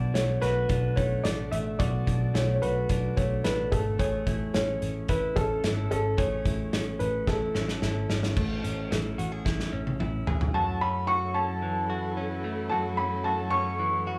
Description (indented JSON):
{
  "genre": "jangly indie pop",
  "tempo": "110 BPM",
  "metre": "4/4",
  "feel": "straight",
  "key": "A major",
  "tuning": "A4 = 435 Hz",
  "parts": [
    { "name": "dark upright piano", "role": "melody", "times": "0.0-14.2 s", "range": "A4 to C#6", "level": "-32 LUFS", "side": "equal", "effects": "slapback echo" },
    { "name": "direct-recorded clean electric guitar", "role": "arpeggios", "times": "0.0-14.2 s", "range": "F#2 to G#4", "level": "-35 LUFS", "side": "equal", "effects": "none" },
    { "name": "vintage muted picked electric bass", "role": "bass", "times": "0.0-10.5 s", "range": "G#1 to B1", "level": "-32 LUFS", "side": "equal", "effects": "none" },
    { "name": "loose indie drum kit", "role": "drums", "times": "0.2-10.5 s", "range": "crash cymbal, hi-hat, kick drum, snare drum, toms", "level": "-33 LUFS", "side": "equal", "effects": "none" },
    { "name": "warm studio string section", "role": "sustained chords", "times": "10.5-14.2 s", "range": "F#3 to A4", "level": "-41 LUFS", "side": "equal", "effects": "plate reverb" }
  ],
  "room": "light reverb",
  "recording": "live gig heard through the venue's PA, club reverb",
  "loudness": "-28 LUFS",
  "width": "mono",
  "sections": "0.0-8.4 A section; 8.4-10.5 B section; 10.5-14.2 C section",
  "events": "drum fill 7.3-8.4, 9.5-10.5",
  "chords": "0.0 Bm7; 4.0 Amaj7; 10.5 F#m7"
}